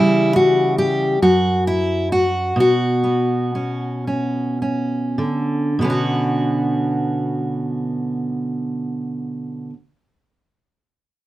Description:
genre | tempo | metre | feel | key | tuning
folk, solo fingerstyle acoustic guitar | 32-48 BPM (dotted quarters) | 6/8 | straight | B minor | A4 = 440 Hz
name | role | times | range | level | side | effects
fingerpicked steel-string acoustic guitar | solo | 0.0-9.8 s | F#2 to G4 | -17 LUFS | equal | none
room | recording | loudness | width
moderate studio ambience, RT60 0.5 s | none | -17 LUFS | side -16 dB against mid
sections
0.0-5.8 A section; 5.8-9.5 B section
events
slowing down 0.0-5.8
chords
0.0 C#dim; 1.2 N.C.; 2.6 Bmadd9

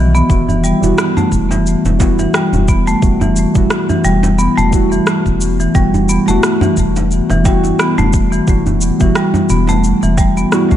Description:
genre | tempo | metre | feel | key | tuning
organic downtempo | 88 BPM | 4/4 | swing 56% on 16ths | E minor | A4 = 440 Hz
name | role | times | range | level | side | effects
muted felt-like synth keys | accompaniment | 0.0-10.8 s | G3 to E5 | -18 LUFS | right 1 dB | chorus, sidechain pumping, digital delay
marimba with medium hard mallets | arpeggios | 0.0-10.8 s | E3 to B3 | -15 LUFS | left 1 dB | digital delay
round analog bass | bass | 0.0-10.8 s | E1 to B1 | -16 LUFS | equal | sidechain pumping
electronic cabasa and rim click | drums | 0.2-10.8 s | none | -21 LUFS | equal | studio reverb
electronic kick drum | drums | 0.3-10.8 s | none | -15 LUFS | equal | studio reverb
djembe | percussion | 0.5-10.8 s | none | -20 LUFS | right 1 dB | none
room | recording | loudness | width
light reverb, digital ambience | nothing above 10.8 kHz | -11 LUFS | side -11 dB against mid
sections
0.0-10.8 A section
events
none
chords
0.0 Emadd9

